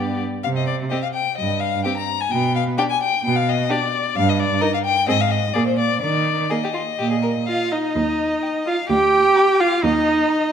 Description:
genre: quick classical-period movement for string quartet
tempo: 128 BPM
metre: 4/4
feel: straight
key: Eb major from 4.2 s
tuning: A4 = 440 Hz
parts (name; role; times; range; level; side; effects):
- rich violin; melody; 0.0-10.5 s; C5 to Bb5; -22 LUFS; left 8 dB; none
- warm violin; second line; 0.0-10.5 s; F4 to G5; -26 LUFS; left 2 dB; none
- rich viola; accompaniment; 0.0-10.5 s; Bb3 to G4; -20 LUFS; right 2 dB; none
- rich cello; bass; 0.0-10.2 s; D2 to Eb3; -23 LUFS; right 4 dB; none
room: moderate recital hall reverb, RT60 1.6 s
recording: none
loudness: -17 LUFS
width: side -8 dB against mid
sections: 0.0-8.0 A section; 8.0-10.5 B section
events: none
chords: 0.4 C5; 2.3 G/B; 4.2 Eb/G; 5.1 Ab6; 5.5 Bb; 6.0 Eb5; 8.0 Eb; 8.9 Bb/D; 9.8 Eb5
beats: | 0.45 0.92 1.39 1.85 | 2.31 2.78 3.23 3.69 | 4.15 4.61 5.08 5.55 | 6.03 6.51 6.99 7.47 | 7.95 8.42 8.89 9.36 | 9.83 10.29

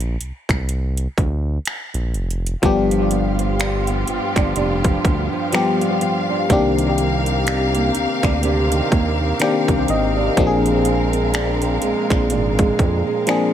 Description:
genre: contemporary R&B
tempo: 62 BPM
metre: 4/4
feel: swing 58% on 16ths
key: C minor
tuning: A4 = 440 Hz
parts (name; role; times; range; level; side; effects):
- smooth gliding synth bass; bass; 0.0-13.0 s; F1 to F2; -22 LUFS; equal; none
- trap drum kit; drums; 0.0-13.5 s; finger snaps, hi-hat, kick drum; -21 LUFS; equal; overdrive
- FM electric piano; accompaniment; 2.6-13.5 s; Eb3 to G5; -20 LUFS; left 4 dB; chorus, analog delay
- warm studio string section; sustained chords; 2.6-13.5 s; Ab3 to F5; -24 LUFS; equal; sidechain pumping
- flamenco guitar; arpeggios; 2.6-13.5 s; G2 to D4; -23 LUFS; right 6 dB; analog delay
room: light reverb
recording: echo-heavy mix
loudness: -16 LUFS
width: side -10 dB against mid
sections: 0.0-13.5 A section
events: FM electric piano fill 8.9-10.4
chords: 0.0 Bbadd9; 2.6 G7; 6.5 Cm9; 10.4 Bb9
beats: 0.69 1.66 | 2.63 3.60 4.57 5.53 | 6.50 7.47 8.44 9.40 | 10.37 11.34 12.31 13.27

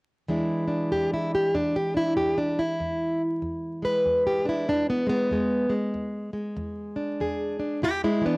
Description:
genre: acoustic country blues, solo or duo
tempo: 96 BPM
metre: 4/4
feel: swing 61% on 8ths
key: E mixolydian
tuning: A4 = 440 Hz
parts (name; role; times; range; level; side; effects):
- fingerpicked plugged-in old ladder-braced acoustic guitar; solo; 0.3-8.4 s; E2 to B4; -23 LUFS; equal; cassette tape
room: light reverb, studio reverb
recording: home recording on cassette, vinyl crackle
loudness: -24 LUFS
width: side -28 dB against mid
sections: 0.3-8.4 A section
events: steel-string acoustic guitar solo 0.3-8.4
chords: 0.3 E7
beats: | 0.29 0.92 1.54 2.17 | 2.80 3.42 4.05 4.68 | 5.31 5.93 6.56 7.19 | 7.82

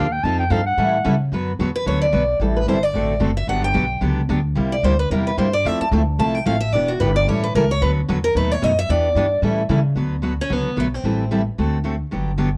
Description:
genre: acoustic string swing (jazz manouche)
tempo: 222 BPM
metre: 4/4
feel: swing 57% on 8ths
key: D major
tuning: A4 = 440 Hz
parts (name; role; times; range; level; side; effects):
- clear clarinet; second line; 0.0-1.2 s; F5 to A5; -24 LUFS; equal; none
- picked steel-string acoustic guitar; accompaniment; 0.0-12.5 s; B2 to B4; -24 LUFS; equal; none
- upright bass; bass; 0.0-12.6 s; E1 to C#3; -24 LUFS; equal; none
- picked steel-string acoustic guitar; melody; 1.8-11.3 s; A3 to A5; -24 LUFS; equal; none
room: light reverb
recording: worn, warbling old tape, cassette tape, warbly pitch drift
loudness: -20 LUFS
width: mono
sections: 0.0-1.3 A section; 1.3-10.0 A section; 10.0-12.6 B section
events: clarinet solo 0.0-1.3; steel-string acoustic guitar solo 1.3-10.0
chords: 0.2 F7; 0.8 A7; 1.3 D6; 2.4 Am7; 2.9 D7; 3.5 Gmaj7; 4.6 C7; 5.6 Fmaj7; 6.7 Em7; 7.3 A7; 7.8 D6; 8.3 B7; 8.9 Em7; 9.4 A7; 10.0 D6; 11.0 Am7; 11.6 D7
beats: | 0.24 0.51 0.78 1.05 | 1.32 1.59 1.86 2.13 | 2.40 2.67 2.94 3.21 | 3.49 3.76 4.03 4.30 | 4.57 4.84 5.11 5.38 | 5.65 5.92 6.19 6.46 | 6.73 7.00 7.27 7.54 | 7.81 8.08 8.35 8.62 | 8.89 9.16 9.43 9.70 | 9.97 10.24 10.51 10.78 | 11.05 11.32 11.59 11.86 | 12.13 12.40

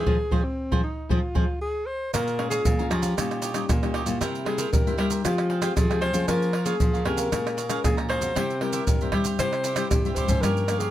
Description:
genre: samba and choro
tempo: 116 BPM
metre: 4/4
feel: straight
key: unclear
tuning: A4 = 445 Hz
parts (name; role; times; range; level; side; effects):
- breathy alto saxophone; melody; 0.0-10.9 s; C4 to C5; -28 LUFS; left 1 dB; none
- cavaquinho; accompaniment; 0.0-10.9 s; Eb4 to Bb5; -33 LUFS; right 5 dB; none
- nylon-string guitar; accompaniment; 0.0-10.9 s; F2 to Ab4; -31 LUFS; left 5 dB; none
- nylon-string guitar; bass; 0.0-10.9 s; G2 to G3; -28 LUFS; equal; none
- surdo, maracas, pandeiro and tamborim; percussion; 0.1-10.9 s; none; -26 LUFS; right 1 dB; none
room: light reverb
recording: none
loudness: -22 LUFS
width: side -12 dB against mid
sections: 0.0-2.1 A section; 2.1-10.9 B section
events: band accent 0.1-2.1; drum fill 1.7-2.1, 9.9-10.4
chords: 0.1 Fm; 2.1 Bbm7; 3.2 Eb7/Bb; 4.2 C7; 5.2 Fmadd9; 6.3 Db6/F; 7.3 Bbm7; 8.4 C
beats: | 0.06 0.58 1.10 1.62 | 2.14 2.66 3.17 3.69 | 4.21 4.73 5.25 5.77 | 6.28 6.80 7.32 7.84 | 8.36 8.88 9.39 9.91 | 10.43

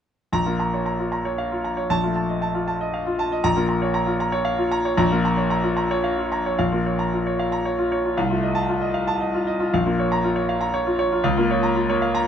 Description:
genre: classical, virtuoso piano study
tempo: 116 BPM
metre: 3/4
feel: rubato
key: Bb minor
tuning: A4 = 440 Hz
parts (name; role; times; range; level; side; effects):
- clear concert grand piano; solo; 0.3-12.3 s; Bb1 to Bb5; -20 LUFS; equal; none
room: light reverb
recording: close, detailed microphones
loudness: -20 LUFS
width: side -8 dB against mid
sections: 0.3-6.6 A section; 6.6-12.3 B section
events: none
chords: 0.3 Bbm; 1.9 F7/Bb; 3.5 Bbm; 8.2 F7/C; 9.7 Bbm; 11.2 Bbm/Db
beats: | 0.33 0.86 1.39 | 1.91 2.42 2.94 | 3.45 3.95 4.47 | 4.99 5.51 6.04 | 6.59 7.12 7.65 | 8.17 8.68 9.20 | 9.72 10.23 10.74 | 11.24 11.75 12.26

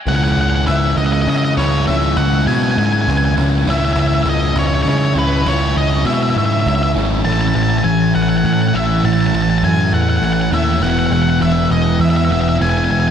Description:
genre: post-rock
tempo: 101 BPM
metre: 3/4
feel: straight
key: C# minor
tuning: A4 = 443 Hz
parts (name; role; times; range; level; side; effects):
- octave-fuzz lead guitar; melody; 0.1-13.1 s; B4 to A5; -19 LUFS; left 1 dB; distortion, diffuse ambient delay
- sludgy distorted guitar; riff; 0.1-13.1 s; A2 to E4; -17 LUFS; equal; overdrive
- fuzz picked electric bass; bass; 0.1-13.1 s; E1 to C#3; -17 LUFS; equal; overdrive
room: wet huge ambient reverb, RT60 8.8 s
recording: dreamy mix soaked in reverb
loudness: -13 LUFS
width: side -8 dB against mid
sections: 0.1-13.1 A section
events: none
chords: 0.1 C#m; 7.2 A6; 10.8 E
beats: | 0.08 0.68 1.28 | 1.88 2.48 3.07 | 3.67 4.27 4.86 | 5.46 6.06 6.65 | 7.25 7.84 8.44 | 9.04 9.63 10.22 | 10.82 11.41 12.01 | 12.60

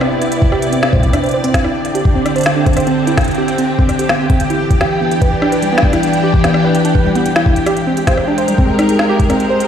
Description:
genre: IDM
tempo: 147 BPM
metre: 4/4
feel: straight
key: unclear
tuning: A4 = 440 Hz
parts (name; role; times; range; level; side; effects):
- soft string machine; sustained chords; 0.0-9.7 s; C3 to G5; -16 LUFS; equal; ensemble chorus
- warbly dusty pluck; arpeggios; 0.0-9.6 s; G3 to C5; -17 LUFS; right 1 dB; chorus, digital delay
- organic electronic drum kit; drums; 0.0-9.7 s; hi-hat, rim click, snare drum; -20 LUFS; left 1 dB; overdrive, digital delay
- flickering grainy texture; texture; 0.0-9.7 s; G5; -24 LUFS; equal; built-in reverb
- electronic kick drum; drums; 0.4-9.3 s; none; -13 LUFS; equal; overdrive
room: moderate lush hall reverb, RT60 2.3 s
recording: played on a big sound system in a bare room, stone room reverb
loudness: -11 LUFS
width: side -8 dB against mid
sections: 0.0-9.7 A section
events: none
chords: 0.0 Cmaj9; 1.1 D7sus4; 4.4 Em7; 7.7 Abmaj9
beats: 0.32 0.73 | 1.13 1.54 1.95 2.36 | 2.77 3.17 3.58 3.99 | 4.40 4.81 5.22 5.62 | 6.03 6.44 6.85 7.26 | 7.67 8.07 8.48 8.89 | 9.30

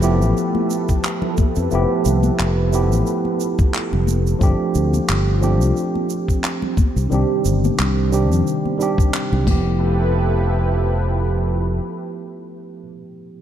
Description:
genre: sunset chillout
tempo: 89 BPM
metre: 4/4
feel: swing 55% on 16ths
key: F lydian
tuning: A4 = 440 Hz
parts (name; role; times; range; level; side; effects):
- tine electric piano; accompaniment; 0.0-13.4 s; Eb3 to G4; -22 LUFS; right 2 dB; auto-pan, tape echo
- lush unison pad; sustained chords; 0.0-12.8 s; C3 to B4; -25 LUFS; equal; chorus, phaser, vintage 12-bit sampler grit
- fingered electric bass; bass; 0.0-11.8 s; F1 to F2; -18 LUFS; equal; none
- jazz brush drum kit; drums; 0.0-9.6 s; crash cymbal, handclaps, shaker; -27 LUFS; right 1 dB; none
- congas; percussion; 0.5-9.6 s; none; -27 LUFS; left 5 dB; none
- electronic kick drum; drums; 0.9-9.6 s; none; -17 LUFS; equal; none
room: light reverb, small room ambience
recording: dark, warm production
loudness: -16 LUFS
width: side -10 dB against mid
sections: 0.0-9.8 A section; 9.8-12.5 B section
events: filter sweep on fingered electric bass 0.0-9.8; filter sweep on analog synth pad 0.0-9.8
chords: 0.0 Fmaj9#11; 4.4 G9sus4; 6.8 Cmadd9; 9.5 Fmaj9#11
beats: 0.37 1.04 | 1.72 2.39 3.07 3.74 | 4.42 5.09 5.76 6.44 | 7.11 7.79 8.46 9.13 | 9.81 10.48 11.16 11.83

